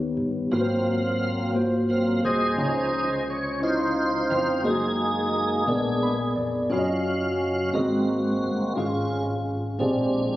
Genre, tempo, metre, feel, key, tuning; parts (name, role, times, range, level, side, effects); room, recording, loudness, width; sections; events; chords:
gospel; 58 BPM (dotted quarters); 6/8; straight; Db major; A4 = 441 Hz
mellow tine electric piano; accompaniment; 0.0-10.4 s; Ab2 to Cb6; -24 LUFS; equal; medium stereo tremolo
deep dub fingered electric bass; bass; 0.0-10.4 s; F1 to Eb2; -36 LUFS; equal
tonewheel organ; sustained chords; 0.5-10.4 s; F3 to F5; -26 LUFS; right 1 dB; fast rotary speaker, chorus vibrato
moderate lush hall reverb, RT60 2.9 s; recorded on a phone in the room, club reverb, compression; -22 LUFS; side -15 dB against mid
0.0-10.4 A section
tonewheel organ solo 0.0-10.4; tine electric piano fill 5.7-6.7
0.0 Ebaug7; 0.5 Ab13; 2.6 Dbmaj9; 4.6 Gb69; 5.7 Bb7b9; 6.7 Ebm9/Gb; 7.7 Ab7; 8.8 Db/Ab; 9.8 Bb13